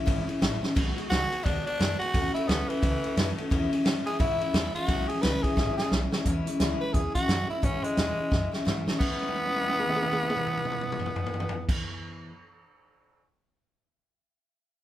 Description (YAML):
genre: rockabilly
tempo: 175 BPM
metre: 4/4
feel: swing 61% on 8ths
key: E major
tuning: A4 = 439 Hz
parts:
  - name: picked steel-string acoustic guitar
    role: accompaniment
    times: 0.0-12.3 s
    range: E2 to F#4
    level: -31 LUFS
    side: left 2 dB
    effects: none
  - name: upright bass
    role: bass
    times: 0.1-11.7 s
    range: G#1 to G#2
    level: -34 LUFS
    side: equal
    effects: none
  - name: vintage drum kit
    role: drums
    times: 0.1-13.2 s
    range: crash cymbal, hi-hat, kick drum, ride cymbal, snare drum, toms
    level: -28 LUFS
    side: right 1 dB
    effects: none
  - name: raspy tenor saxophone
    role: melody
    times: 1.1-11.7 s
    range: E3 to B4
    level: -29 LUFS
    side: equal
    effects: none
room: moderate large studio reverb, RT60 0.9 s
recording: band playing live in one room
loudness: -25 LUFS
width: side -13 dB against mid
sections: 0.0-6.3 A section; 6.3-9.0 B section; 9.0-11.8 C section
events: drum fill 0.6, 5.6-6.3, 8.3-9.0, 9.2-11.7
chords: 0.0 E6; 0.8 B6; 2.1 A6; 3.5 E6